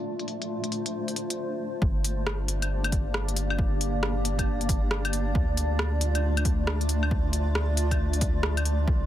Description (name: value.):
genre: future garage.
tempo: 136 BPM.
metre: 4/4.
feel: swing 63% on 16ths.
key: G minor.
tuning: A4 = 440 Hz.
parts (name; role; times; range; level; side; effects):
granular cloud pad; sustained chords; 0.0-9.1 s; A3 to D5; -31 LUFS; equal; built-in reverb, sidechain pumping.
organic electronic drum kit; drums; 0.2-8.8 s; claves, hi-hat, rim click; -31 LUFS; left 1 dB; soft clipping on snare.
soft dub sub bass; bass; 1.8-9.1 s; G1 to D2; -27 LUFS; equal; tube saturation.
electronic kick drum; drums; 1.8-9.0 s; none; -27 LUFS; equal; overdrive.
room: digital ambience.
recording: dense, heavily limited modern master, low-pass filter.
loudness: -24 LUFS.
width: side -12 dB against mid.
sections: 0.0-1.8 A section; 1.8-9.1 B section.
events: filter sweep 0.0-1.8.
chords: 0.0 Dm; 1.8 Gm; 5.3 Dm.